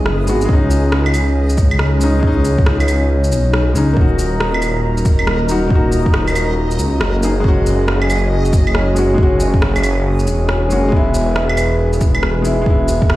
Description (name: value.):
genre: future garage.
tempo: 138 BPM.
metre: 4/4.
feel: swing 63% on 16ths.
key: Eb phrygian.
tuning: A4 = 440 Hz.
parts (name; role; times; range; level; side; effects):
felt-muted upright piano; accompaniment; 0.0-13.2 s; G#3 to Ab4; -20 LUFS; left 1 dB; sidechain pumping, digital delay.
dark analog pad; sustained chords; 0.0-13.2 s; Eb4 to Bb5; -23 LUFS; right 1 dB; lush chorus, sidechain pumping.
swelling detuned saw bass; bass; 0.0-13.2 s; Eb1 to Db2; -16 LUFS; equal; sidechain pumping.
backwards swelling texture; texture; 0.0-13.2 s; Eb5; -31 LUFS; left 1 dB; built-in reverb.
electronic rim click, shaker and claves; drums; 0.1-13.2 s; none; -22 LUFS; right 1 dB; studio reverb.
electronic kick drum; drums; 0.5-13.1 s; none; -14 LUFS; equal; studio reverb.
room: light reverb.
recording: played on a big sound system in a bare room, stone room reverb.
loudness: -12 LUFS.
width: side -16 dB against mid.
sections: 0.0-13.2 A section.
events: none.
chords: 0.5 Dbsus2; 4.0 Ebm; 7.4 Gbsus2; 10.9 E.